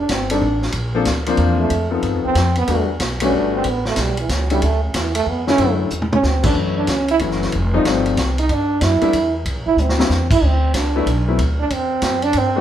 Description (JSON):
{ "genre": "jazz, small-group swing and bop", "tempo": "186 BPM", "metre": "3/4", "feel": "swing 64% on 8ths", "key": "unclear", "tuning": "A4 = 438 Hz", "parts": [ { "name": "warm trombone", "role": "second line", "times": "0.0-12.6 s", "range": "C#3 to E4", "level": "-20 LUFS", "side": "right 3 dB", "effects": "none" }, { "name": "upright bass", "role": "bass", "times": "0.0-12.6 s", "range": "F1 to G2", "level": "-21 LUFS", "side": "equal", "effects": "none" }, { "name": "vintage drum kit", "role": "drums", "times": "0.1-12.4 s", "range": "crash cymbal, hi-hat, kick drum, ride cymbal, snare drum, toms", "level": "-23 LUFS", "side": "equal", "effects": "none" }, { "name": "clear concert grand piano", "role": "accompaniment", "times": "0.3-12.6 s", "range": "D3 to C5", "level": "-21 LUFS", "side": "left 6 dB", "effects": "none" } ], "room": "moderate large studio reverb, RT60 0.9 s", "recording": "band playing live in one room", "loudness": "-16 LUFS", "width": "side -10 dB against mid", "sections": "0.0-6.6 A section; 6.6-12.6 A section", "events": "trombone solo 0.0-12.6; drum fill 5.9-6.2, 9.8-10.1", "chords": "0.0 F13 (rootless); 0.8 Bb; 1.7 F7#11; 2.7 Em11; 3.7 Aadd9; 4.6 Dmaj9; 6.6 F#m7; 7.5 F9; 8.5 G5; 9.5 C9; 10.4 D69; 11.4 D9" }